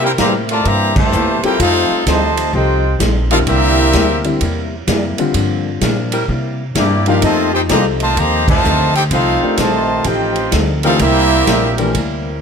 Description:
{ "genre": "jazz, big band swing", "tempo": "128 BPM", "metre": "4/4", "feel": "swing 65% on 8ths", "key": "C major", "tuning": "A4 = 440 Hz", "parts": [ { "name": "clear trombone section", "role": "second line", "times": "0.0-11.7 s", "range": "Bb2 to G4", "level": "-19 LUFS", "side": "right 2 dB", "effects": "none" }, { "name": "archtop guitar, miked and amplified", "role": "accompaniment", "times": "0.0-12.3 s", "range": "G2 to A4", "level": "-24 LUFS", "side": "left 4 dB", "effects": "none" }, { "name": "warm saxophone section", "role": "sustained chords", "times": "0.0-12.4 s", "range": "F3 to Bb4", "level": "-25 LUFS", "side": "left 1 dB", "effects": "none" }, { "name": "upright bass", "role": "bass", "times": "0.0-12.4 s", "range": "A1 to C3", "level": "-19 LUFS", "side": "equal", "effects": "none" }, { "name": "bright trumpet section", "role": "melody", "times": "0.1-11.8 s", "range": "Bb3 to Bb5", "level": "-17 LUFS", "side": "left 1 dB", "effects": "none" }, { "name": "swinging big-band drum kit", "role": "drums", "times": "0.2-12.1 s", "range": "crash cymbal, hi-hat, kick drum, ride cymbal, snare drum", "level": "-20 LUFS", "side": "equal", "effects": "none" }, { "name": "warm baby grand piano", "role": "accompaniment", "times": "1.4-11.9 s", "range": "D3 to Bb4", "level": "-20 LUFS", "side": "left 4 dB", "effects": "none" } ], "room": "light reverb", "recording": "none", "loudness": "-12 LUFS", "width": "side -6 dB against mid", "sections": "0.0-12.4 A section", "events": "band accent 0.9, 8.4", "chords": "0.0 C7; 1.6 F7; 3.5 C7; 5.4 Gm7; 6.3 C7; 7.2 F7; 11.0 C7", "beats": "0.18 0.65 1.12 | 1.59 2.06 2.53 3.00 | 3.47 3.94 4.41 4.88 | 5.35 5.82 6.29 6.76 | 7.23 7.70 8.17 8.64 | 9.12 9.59 10.06 10.53 | 11.01 11.48 11.95" }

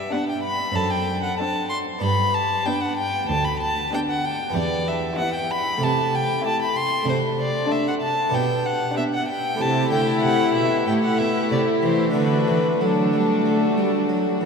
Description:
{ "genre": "classical, baroque-style concerto movement with solo episodes", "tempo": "95 BPM", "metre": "4/4", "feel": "straight", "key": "unclear", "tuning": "A4 = 441 Hz", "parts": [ { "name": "rich violin", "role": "melody", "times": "0.0-14.4 s", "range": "A4 to C6", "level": "-24 LUFS", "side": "left 1 dB", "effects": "none" }, { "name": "harpsichord", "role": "accompaniment", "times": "0.0-14.5 s", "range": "D2 to A4", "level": "-28 LUFS", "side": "left 1 dB", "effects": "none" }, { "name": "rich chamber violin section", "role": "melody", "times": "0.1-14.5 s", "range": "F#4 to A4", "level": "-35 LUFS", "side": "left 6 dB", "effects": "none" }, { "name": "rich chamber violin section", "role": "second line", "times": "0.1-14.5 s", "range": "D4 to E4", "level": "-27 LUFS", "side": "left 1 dB", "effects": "none" }, { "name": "clear symphonic viola section", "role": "accompaniment", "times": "0.1-14.5 s", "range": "A3 to C4", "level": "-28 LUFS", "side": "equal", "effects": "none" }, { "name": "rich studio cello section", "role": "bass", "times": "0.8-14.5 s", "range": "D2 to A3", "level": "-27 LUFS", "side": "right 3 dB", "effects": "none" } ], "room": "wet cathedral reverb, RT60 4.9 s", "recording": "none", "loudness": "-19 LUFS", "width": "side -5 dB against mid", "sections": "0.0-14.5 A section", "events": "none", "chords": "0.0 G; 0.8 D7/F#; 2.0 G; 4.6 Em; 5.8 Am7/C; 7.1 D7/C; 8.3 G/B; 9.6 Am7; 12.2 D", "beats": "0.12 0.76 1.39 | 2.02 2.65 3.28 3.92 | 4.55 5.18 5.81 6.45 | 7.07 7.70 8.34 8.97 | 9.60 10.23 10.87 11.51 | 12.16 12.81 13.46 14.11" }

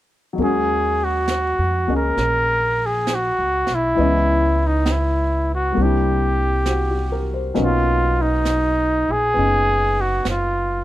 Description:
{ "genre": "jazz ballad", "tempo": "67 BPM", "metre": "4/4", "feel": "swing 68% on 8ths", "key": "Eb minor", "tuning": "A4 = 440 Hz", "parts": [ { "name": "warm baby grand piano", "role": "accompaniment", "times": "0.3-10.8 s", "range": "Fb3 to Eb5", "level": "-24 LUFS", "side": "left 2 dB", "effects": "none" }, { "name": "warm trumpet", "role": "melody", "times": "0.4-10.8 s", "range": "Eb4 to Bb4", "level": "-19 LUFS", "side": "equal", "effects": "none" }, { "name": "upright bass", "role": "bass", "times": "0.4-10.8 s", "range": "F#1 to F2", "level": "-22 LUFS", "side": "equal", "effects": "none" }, { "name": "jazz brush drum kit", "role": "drums", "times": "0.4-10.8 s", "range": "brushed snare drum, hi-hat, snare drum", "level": "-30 LUFS", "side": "right 4 dB", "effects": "none" } ], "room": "little or no reverb", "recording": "none", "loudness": "-17 LUFS", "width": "side -14 dB against mid", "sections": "0.4-10.8 A section", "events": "none", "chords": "0.4 Ebm11; 4.0 Dbm9; 5.8 C9; 7.6 Bmaj7", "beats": "| 0.38 1.28 2.17 3.07 | 3.97 4.87 5.76 6.66 | 7.56 8.46 9.35 10.25" }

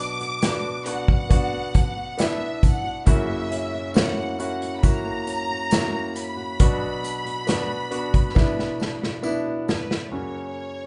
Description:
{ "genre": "pop ballad", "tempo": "68 BPM", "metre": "4/4", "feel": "straight", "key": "B harmonic minor", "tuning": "A4 = 438 Hz", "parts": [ { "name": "rich studio violin section", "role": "melody", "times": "0.0-10.9 s", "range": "B4 to D6", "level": "-33 LUFS", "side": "equal", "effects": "none" }, { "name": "bright concert grand piano", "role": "accompaniment", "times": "0.0-10.9 s", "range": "F#2 to F#4", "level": "-31 LUFS", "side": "equal", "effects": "none" }, { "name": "flamenco guitar", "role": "arpeggios", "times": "0.0-10.7 s", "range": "F#2 to B4", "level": "-37 LUFS", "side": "equal", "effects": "none" }, { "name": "unplugged drum kit", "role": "drums", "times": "0.2-10.1 s", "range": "hi-hat, kick drum, snare drum", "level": "-23 LUFS", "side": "equal", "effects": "none" }, { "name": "tambourine", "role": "percussion", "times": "0.4-9.9 s", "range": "none", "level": "-48 LUFS", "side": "equal", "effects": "none" } ], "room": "light reverb", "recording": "band playing live in one room, nothing above 10.3 kHz", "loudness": "-24 LUFS", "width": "mono", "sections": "0.0-10.1 A section", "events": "drum fill 8.4-10.1", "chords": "0.0 Bm; 3.1 F#7; 6.6 Bm; 10.1 F#", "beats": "0.42 1.30 2.19 | 3.07 3.95 4.83 5.72 | 6.60 7.48 8.36 9.25 | 10.13" }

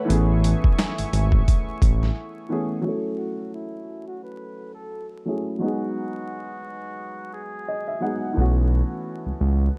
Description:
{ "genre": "hip hop, boom-bap hip-hop", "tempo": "87 BPM", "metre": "4/4", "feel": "swing 57% on 16ths", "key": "F# dorian", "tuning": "A4 = 440 Hz", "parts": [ { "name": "warm upright piano", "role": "accompaniment", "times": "0.0-9.8 s", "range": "E3 to F#5", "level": "-31 LUFS", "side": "equal", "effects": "cassette tape, high-pass filter, low-pass filter" }, { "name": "warm analog pad", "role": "sustained chords", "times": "0.0-2.8 s", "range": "A3 to C#6", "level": "-36 LUFS", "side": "equal", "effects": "chorus, high-pass filter, low-pass filter" }, { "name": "smooth gliding synth bass", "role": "bass", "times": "0.1-2.1, 8.4-9.7 s", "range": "G#1 to C#2", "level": "-22 LUFS", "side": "equal", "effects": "none" }, { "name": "boom bap sampler-style drum kit", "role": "drums", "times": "0.1-2.1 s", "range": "hi-hat, kick drum, snare drum", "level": "-22 LUFS", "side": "equal", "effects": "none" }, { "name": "trumpet with metal mute", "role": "melody", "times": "3.2-8.3 s", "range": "E4 to B4", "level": "-39 LUFS", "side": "equal", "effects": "high-pass filter, low-pass filter, slapback echo" } ], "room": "little or no reverb", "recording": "dark, warm production, vinyl crackle", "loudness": "-24 LUFS", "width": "mono", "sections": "0.0-2.9 A section; 2.9-9.8 B section", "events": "break 2.2-2.9; filter sweep 2.9-9.8", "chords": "0.1 Amaj7; 2.9 F#m7; 5.6 G#m7; 8.4 B7sus4", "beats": "| 0.09 0.78 1.47 2.16 | 2.85 3.54 4.23 4.92 | 5.61 6.30 6.99 7.68 | 8.37 9.06 9.75" }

